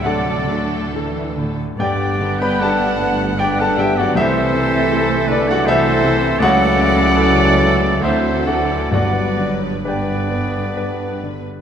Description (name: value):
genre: classical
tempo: 64-81 BPM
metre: 3/4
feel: rubato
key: G major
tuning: A4 = 440 Hz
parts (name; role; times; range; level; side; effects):
- muted symphonic violin section; melody; 0.0-11.4 s; G4 to B4; -30 LUFS; left 4 dB; none
- warm grand piano; melody; 0.0-11.6 s; C2 to B5; -20 LUFS; left 2 dB; none
- clear oboe; second line; 0.0-11.2 s; B4 to G5; -24 LUFS; right 2 dB; none
- muted symphonic violin section; second line; 0.0-11.2 s; B4 to G5; -27 LUFS; left 1 dB; none
- silver concert flute; second line; 0.0-11.2 s; D5 to B5; -26 LUFS; left 1 dB; none
- muted symphonic viola section; accompaniment; 0.0-11.4 s; A3 to F#4; -26 LUFS; right 2 dB; none
- mellow French horn section; sustained chords; 0.0-11.2 s; D3 to B3; -24 LUFS; left 2 dB; none
- muted symphonic cello section; bass; 0.0-11.5 s; G2 to E3; -25 LUFS; right 3 dB; none
- muted symphonic double bass section; bass; 0.0-11.5 s; G1 to D2; -26 LUFS; right 4 dB; none
- timpani; percussion; 0.0-0.4, 8.9-10.3 s; G2 to D3; -27 LUFS; left 2 dB; none
- warm clarinet; second line; 1.8-11.3 s; A4 to C5; -27 LUFS; right 1 dB; none
- warm bassoon; accompaniment; 1.8-11.3 s; D3 to F#3; -27 LUFS; right 2 dB; none
room: moderate scoring stage reverb, RT60 1.9 s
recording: lossy compression artefacts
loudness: -14 LUFS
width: side -8 dB against mid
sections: 0.0-11.6 A section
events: none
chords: 0.0 D; 1.8 G; 4.2 Am/C; 6.4 A/C#; 8.0 D9; 8.9 G